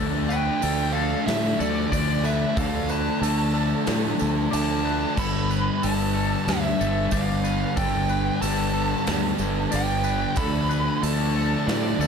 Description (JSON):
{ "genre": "rock, shoegaze and dream pop", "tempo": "92 BPM", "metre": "4/4", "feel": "straight", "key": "G mixolydian", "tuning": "A4 = 443 Hz", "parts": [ { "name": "twangy electric guitar", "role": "arpeggios", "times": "0.0-12.1 s", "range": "A4 to D5", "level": "-33 LUFS", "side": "left 9 dB", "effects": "analog chorus, slapback echo" }, { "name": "crunchy overdriven guitar", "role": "riff", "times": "0.0-12.1 s", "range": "G2 to D4", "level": "-28 LUFS", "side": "right 15 dB", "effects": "reverse reverb" }, { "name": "thick fuzz guitar", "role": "riff", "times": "0.0-12.1 s", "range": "G2 to D4", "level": "-27 LUFS", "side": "left 9 dB", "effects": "distortion, wide subtle chorus" }, { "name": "growling fingered electric bass", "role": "bass", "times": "0.0-12.1 s", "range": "G1 to A2", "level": "-27 LUFS", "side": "right 1 dB", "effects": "overdrive" }, { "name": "nasal lead guitar with a parked wah", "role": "melody", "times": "0.3-12.1 s", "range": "D5 to B5", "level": "-29 LUFS", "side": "right 2 dB", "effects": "overdrive, slapback echo" }, { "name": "tambourine", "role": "percussion", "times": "0.3-12.1 s", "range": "none", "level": "-40 LUFS", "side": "right 20 dB", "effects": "none" }, { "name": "huge arena drum kit", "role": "drums", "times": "0.6-11.8 s", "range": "crash cymbal, hi-hat, kick drum, snare drum", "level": "-32 LUFS", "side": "equal", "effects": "none" } ], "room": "light reverb, studio reverb", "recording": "none", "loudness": "-21 LUFS", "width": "side -6 dB against mid", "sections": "0.0-12.1 A section", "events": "none", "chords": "0.0 Dm; 5.2 Gadd9; 10.4 Dm", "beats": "0.62 1.27 1.92 | 2.57 3.22 3.87 4.51 | 5.16 5.81 6.46 7.11 | 7.76 8.41 9.07 9.72 | 10.37 11.02 11.67" }